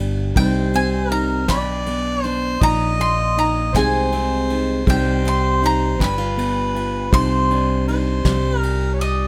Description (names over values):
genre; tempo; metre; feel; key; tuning
acoustic folk duo or small band; 53 BPM (dotted quarters); 6/8; straight; C minor; A4 = 439 Hz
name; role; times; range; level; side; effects
bowl-back mandolin; melody; 0.0-9.3 s; Eb5 to C6; -25 LUFS; equal; none
fingerpicked steel-string acoustic guitar; accompaniment; 0.0-9.3 s; G2 to Ab4; -25 LUFS; equal; none
fingered electric bass; bass; 0.0-9.3 s; G1 to C2; -24 LUFS; equal; none
warm harmonica; second line; 0.4-9.3 s; B4 to Eb5; -27 LUFS; equal; none
soft brush drum kit; drums; 0.4-9.2 s; kick drum, ride cymbal, snare drum; -28 LUFS; equal; none
room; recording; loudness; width
light reverb; close, detailed microphones; -19 LUFS; mono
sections
0.0-9.3 A section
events
none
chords
0.4 Cm; 1.5 Bm; 2.6 Eb5/Bb; 3.7 Ab/C; 4.9 Cm; 6.0 G7; 7.1 Cmadd9